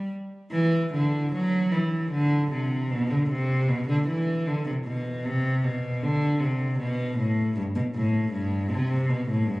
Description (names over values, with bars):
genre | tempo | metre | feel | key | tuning
classical, baroque-style suite movement for unaccompanied cello | 77 BPM | 3/4 | rubato | G major | A4 = 440 Hz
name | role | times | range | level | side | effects
warm cello | solo | 0.0-9.6 s | G2 to G3 | -23 LUFS | equal | none
room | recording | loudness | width
moderate concert hall reverb, RT60 2.3 s | recorded on a phone in the room, club reverb, compression | -23 LUFS | side -21 dB against mid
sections
0.5-9.6 A section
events
none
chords
none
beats
| 0.53 1.32 2.11 | 2.89 3.67 4.44 | 5.22 6.01 6.78 | 7.55 8.32 9.08